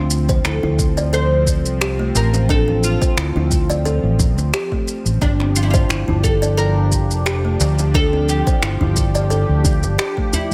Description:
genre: organic downtempo.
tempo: 88 BPM.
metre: 4/4.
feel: swing 54% on 16ths.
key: D minor.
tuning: A4 = 439 Hz.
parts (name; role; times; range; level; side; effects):
oud; melody; 0.0-10.5 s; D4 to C5; -27 LUFS; equal; tape echo.
warm analog pad; sustained chords; 0.0-10.5 s; F3 to G4; -29 LUFS; equal; chorus, vintage 12-bit sampler grit, sidechain pumping.
kalimba; arpeggios; 0.0-10.3 s; A3 to D5; -26 LUFS; equal; tape echo.
fretless electric bass; bass; 0.0-10.5 s; F1 to D2; -20 LUFS; equal; sidechain pumping.
electronic shaker and finger snaps; drums; 0.1-10.5 s; none; -26 LUFS; equal; overdrive.
electronic kick drum; drums; 0.3-10.3 s; none; -21 LUFS; equal; none.
djembe; percussion; 0.4-10.5 s; none; -28 LUFS; equal; none.
room: light reverb, digital ambience.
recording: none.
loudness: -17 LUFS.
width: mono.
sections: 0.0-10.5 A section.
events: none.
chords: 0.0 Dm7; 5.2 G7(no3).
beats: 0.45 1.13 1.81 | 2.49 3.17 3.86 4.54 | 5.22 5.90 6.58 7.26 | 7.95 8.63 9.31 9.99.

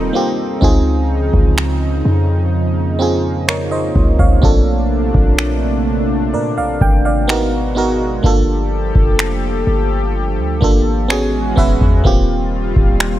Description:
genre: contemporary R&B.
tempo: 63 BPM.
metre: 4/4.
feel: straight.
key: unclear.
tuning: A4 = 444 Hz.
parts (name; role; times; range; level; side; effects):
FM electric piano; accompaniment; 0.0-13.2 s; Bb3 to G#5; -19 LUFS; right 2 dB; chorus.
chorused pulse-width pad; sustained chords; 0.0-13.2 s; Cb3 to A4; -21 LUFS; equal; none.
warm 808-style bass; bass; 0.0-13.2 s; Eb1 to Bb2; -17 LUFS; equal; none.
booming analog drum machine; drums; 0.6-13.2 s; finger snaps, kick drum; -15 LUFS; equal; none.
room: little or no reverb.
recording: none.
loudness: -13 LUFS.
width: side -13 dB against mid.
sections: 0.0-13.2 A section.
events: FM electric piano fill 10.6-12.0.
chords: 0.0 Eb69; 0.6 Dbmaj9; 4.4 Bbmaj9; 7.3 Abm9; 8.2 Gm9; 11.1 E69; 12.0 Eb69.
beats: | 0.62 1.57 2.52 3.48 | 4.43 5.38 6.33 7.29 | 8.24 9.19 10.14 11.10 | 12.05 13.00.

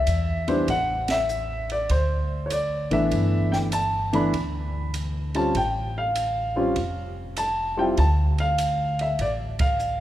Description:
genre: jazz piano trio.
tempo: 99 BPM.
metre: 4/4.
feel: swing 67% on 8ths.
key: D minor.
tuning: A4 = 440 Hz.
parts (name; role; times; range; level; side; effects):
dark upright piano; melody; 0.0-10.0 s; E3 to B5; -24 LUFS; equal; none.
upright bass; bass; 0.0-10.0 s; E#1 to E2; -26 LUFS; equal; none.
compact cocktail drum kit; drums; 0.1-10.0 s; hi-hat, kick drum, ride cymbal, snare drum; -30 LUFS; right 1 dB; none.
room: wet church reverb, RT60 3.7 s.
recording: recorded in a church or concert hall.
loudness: -22 LUFS.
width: side -13 dB against mid.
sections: 0.0-10.0 A section.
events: band accent 1.0-1.3, 9.5-9.8.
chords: 0.0 Fmaj7(no3) (rootless); 0.7 A5; 1.9 D5; 3.1 G69; 5.6 A7(#5, no3); 8.0 Dm.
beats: 0.07 | 0.68 1.29 1.90 2.51 | 3.12 3.73 4.33 4.94 | 5.55 6.16 6.77 7.37 | 7.98 8.59 9.19 9.80.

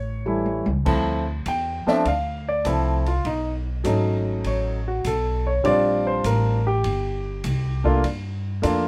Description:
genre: jazz piano trio.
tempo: 100 BPM.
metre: 4/4.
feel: swing 69% on 8ths.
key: D minor.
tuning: A4 = 440 Hz.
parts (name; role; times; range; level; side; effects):
warm grand piano; melody; 0.0-8.9 s; E3 to G5; -25 LUFS; equal; none.
upright bass; bass; 0.0-8.9 s; G1 to G2; -27 LUFS; equal; none.
open jazz drum kit; drums; 0.3-8.8 s; crash cymbal, hi-hat, kick drum, ride cymbal, snare drum, toms; -35 LUFS; equal; none.
room: little or no reverb.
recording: none.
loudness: -23 LUFS.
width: mono.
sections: 0.9-8.9 A section.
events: drum fill 0.3-0.9; grand piano solo 0.9-8.9.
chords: 0.0 A7; 0.9 Dm9; 3.2 B9; 5.6 Bb69; 8.0 Gm7.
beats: 0.26 | 0.86 1.46 2.05 2.65 | 3.25 3.85 4.44 5.04 | 5.64 6.24 6.84 7.44 | 8.04 8.63.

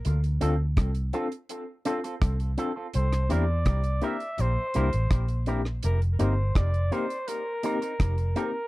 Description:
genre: lovers rock reggae.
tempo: 83 BPM.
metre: 4/4.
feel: straight.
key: unclear.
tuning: A4 = 441 Hz.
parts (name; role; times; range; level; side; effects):
deep reggae drum kit; drums; 0.0-8.5 s; hi-hat, kick drum, rim click; -26 LUFS; equal; none.
vintage muted fingered electric bass; bass; 0.1-8.3 s; F1 to E2; -25 LUFS; equal; none.
overdriven tine electric piano; accompaniment; 0.4-8.5 s; Bb3 to A4; -32 LUFS; left 4 dB; medium tremolo, tape echo.
electric guitar with an envelope filter; stabs; 0.4-8.5 s; C4 to Bb4; -35 LUFS; right 4 dB; tape echo.
warm flugelhorn; melody; 3.0-8.7 s; Bb4 to E5; -32 LUFS; equal; tape echo.
room: little or no reverb.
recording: dry, close 1970s-style studio recording.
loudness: -24 LUFS.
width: side -19 dB against mid.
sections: 0.0-8.7 A section.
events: none.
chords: 0.0 Dm7; 2.9 C7; 5.8 F7sus4.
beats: | 0.05 0.77 1.49 2.22 | 2.94 3.66 4.39 5.11 | 5.83 6.55 7.28 8.00.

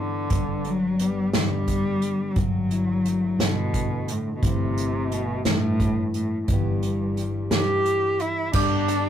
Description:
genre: indie folk with a building arrangement.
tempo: 58 BPM (dotted quarters).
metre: 6/8.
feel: straight.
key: G major.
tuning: A4 = 442 Hz.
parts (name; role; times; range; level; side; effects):
warm cello; melody; 0.0-9.1 s; G2 to G4; -25 LUFS; left 1 dB; none.
fingerpicked steel-string acoustic guitar; accompaniment; 0.0-9.1 s; G2 to G4; -30 LUFS; left 2 dB; none.
fingered electric bass; bass; 0.0-9.1 s; G1 to G2; -29 LUFS; equal; none.
unplugged drum kit; drums; 0.3-9.0 s; crash cymbal, hi-hat, kick drum, snare drum; -26 LUFS; right 1 dB; none.
bluegrass banjo; arpeggios; 8.5-9.1 s; G4 to A4; -27 LUFS; right 6 dB; none.
tambourine; percussion; 8.5-9.0 s; none; -39 LUFS; left 4 dB; none.
picked steel-string acoustic guitar; accompaniment; 8.6-9.1 s; G2 to G4; -31 LUFS; left 3 dB; none.
room: moderate small room reverb, RT60 0.5 s.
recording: rough rehearsal-room recording, warm saturation.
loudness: -21 LUFS.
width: side -10 dB against mid.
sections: 0.0-8.5 A section.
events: none.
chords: 0.3 G; 2.4 Dadd9/G; 4.4 Am/G; 6.5 Em/G; 8.5 G.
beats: | 0.30 1.33 | 2.36 3.39 | 4.42 5.45 | 6.48 7.51 | 8.54.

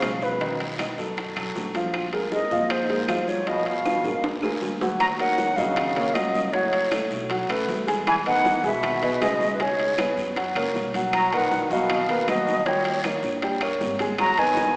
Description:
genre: Afro-Cuban jazz.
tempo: 157 BPM.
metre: 4/4.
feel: straight.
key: Bb minor, Eb minor from 5.0 s.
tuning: A4 = 441 Hz.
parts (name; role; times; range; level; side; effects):
breathy mellow concert flute; melody; 0.0-14.8 s; Cb5 to A#5; -24 LUFS; equal; none.
trombone with metal mute; second line; 0.0-14.8 s; Gb2 to Gb3; -31 LUFS; equal; none.
dark baby grand piano; accompaniment; 0.0-14.7 s; A#2 to Ab5; -26 LUFS; equal; none.
upright bass; bass; 0.0-14.7 s; Gb1 to B2; -36 LUFS; equal; none.
bongos; percussion; 0.0-14.8 s; none; -36 LUFS; left 1 dB; none.
claves; percussion; 0.0-14.4 s; none; -39 LUFS; right 1 dB; none.
congas; percussion; 0.0-14.8 s; none; -38 LUFS; equal; none.
guiro; percussion; 0.0-14.8 s; none; -39 LUFS; left 1 dB; none.
timbales; percussion; 0.0-14.6 s; none; -32 LUFS; right 1 dB; none.
room: wet concert hall reverb, RT60 2.4 s.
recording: recorded in a church or concert hall, small speaker sound.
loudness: -21 LUFS.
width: side -28 dB against mid.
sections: 0.0-5.0 A section; 5.0-14.8 B section.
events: drum fill 3.9-5.0.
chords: 0.4 B7#11; 1.9 Bb9sus4; 4.2 Bb7b13; 5.0 Ebm7; 6.5 Gbm; 7.3 B5; 8.1 Emaj7; 9.6 Db5; 10.4 Gb; 11.1 Bmaj7; 12.7 Eb7; 14.2 Abm7.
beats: 0.02 | 0.41 0.79 1.17 1.56 | 1.94 2.32 2.71 3.09 | 3.47 3.86 4.24 4.62 | 5.01 5.39 5.77 6.16 | 6.54 6.92 7.30 7.69 | 8.07 8.46 8.84 9.22 | 9.60 9.99 10.37 10.75 | 11.13 11.52 11.90 12.28 | 12.66 13.05 13.43 13.81 | 14.19 14.57.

